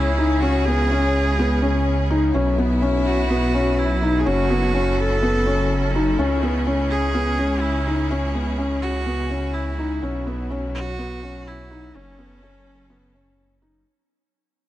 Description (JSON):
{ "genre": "piano and strings electronica", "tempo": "125 BPM", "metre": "4/4", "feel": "straight", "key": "C# minor", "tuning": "A4 = 438 Hz", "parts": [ { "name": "clear viola", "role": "melody", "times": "0.0-13.4 s", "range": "C#4 to A4", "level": "-27 LUFS", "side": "right 2 dB", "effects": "tape echo" }, { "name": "bright string quartet", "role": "sustained chords", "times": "0.0-13.8 s", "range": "C#3 to A4", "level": "-29 LUFS", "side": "left 1 dB", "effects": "none" }, { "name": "felt-muted upright piano", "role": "riff", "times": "0.0-13.8 s", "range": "B3 to D#4", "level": "-23 LUFS", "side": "left 2 dB", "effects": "tape echo" }, { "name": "dark detuned saw bass", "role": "bass", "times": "0.0-13.8 s", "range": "F#1 to C#2", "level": "-23 LUFS", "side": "equal", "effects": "none" } ], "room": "light reverb, studio reverb", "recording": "dark, warm production", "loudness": "-18 LUFS", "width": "side -14 dB against mid", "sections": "0.0-13.9 A section", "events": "drop 0.0-13.9; fade-out 6.2-13.9", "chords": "0.0 C#m; 2.3 Bsus4; 4.3 F#m7; 6.2 C#m; 10.0 Bsus4; 11.9 F#m7" }